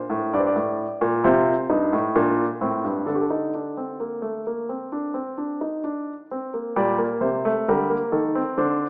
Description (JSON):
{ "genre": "classical, baroque-style 3-part fugue for grand piano", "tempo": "65 BPM", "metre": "4/4", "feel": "straight", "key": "G minor", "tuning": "A4 = 439 Hz", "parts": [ { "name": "warm baby grand piano", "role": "solo", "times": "0.0-8.9 s", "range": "G2 to D5", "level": "-24 LUFS", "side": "equal", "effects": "none" } ], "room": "wet recital hall reverb, RT60 1.8 s", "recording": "small speaker sound", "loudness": "-24 LUFS", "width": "mono", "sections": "0.0-6.8 A section; 6.8-8.9 B section", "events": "none", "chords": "0.0 Gm; 1.2 Am7b5; 3.1 D5; 6.8 Gm/Bb" }